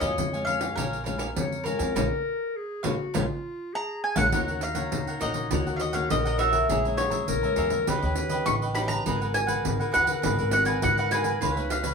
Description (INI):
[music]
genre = samba and choro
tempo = 102 BPM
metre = 4/4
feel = straight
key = Bb minor, Eb minor from 4.3 s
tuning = A4 = 438 Hz
[part]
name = mandolin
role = melody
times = 0.0-11.9 s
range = Bb4 to Db6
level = -27 LUFS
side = equal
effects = none
[part]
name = clear clarinet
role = second line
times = 0.0-11.9 s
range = Eb4 to Db5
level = -31 LUFS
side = left 3 dB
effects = none
[part]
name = cavaquinho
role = accompaniment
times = 0.0-11.9 s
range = Eb4 to Bb5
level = -33 LUFS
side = right 2 dB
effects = none
[part]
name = nylon-string guitar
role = accompaniment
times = 0.0-11.9 s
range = F2 to Bb4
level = -34 LUFS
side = left 3 dB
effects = none
[part]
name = upright bass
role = bass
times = 0.0-11.9 s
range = Ab1 to Ab2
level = -31 LUFS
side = right 1 dB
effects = none
[part]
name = pandeiro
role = percussion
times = 0.0-11.9 s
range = none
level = -31 LUFS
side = equal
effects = none
[sound]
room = moderate studio reverb, RT60 0.6 s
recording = band playing live in one room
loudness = -24 LUFS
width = side -5 dB against mid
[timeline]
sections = 0.0-4.3 A section; 4.3-11.9 B section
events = band accent 2.0-4.3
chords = 0.0 Bbm7; 4.3 Ebm7; 6.7 Bbm7b5; 7.9 Ebaug7; 9.1 Abm9; 11.4 Db9